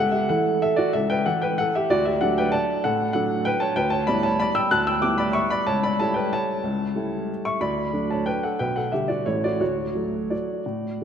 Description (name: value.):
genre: classical, piano waltz.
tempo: 166-200 BPM.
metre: 3/4.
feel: rubato.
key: D major.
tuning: A4 = 436 Hz.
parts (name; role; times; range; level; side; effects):
warm upright piano; solo; 0.0-11.0 s; A1 to F#6; -21 LUFS; equal; none.
room: wet concert hall reverb, RT60 2.5 s.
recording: none.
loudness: -21 LUFS.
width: side -8 dB against mid.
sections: 0.0-11.0 A section.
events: none.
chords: 0.0 A/C#; 1.9 D; 5.7 A7/C#; 7.6 D; 8.6 G/B; 9.3 A; 9.6 D.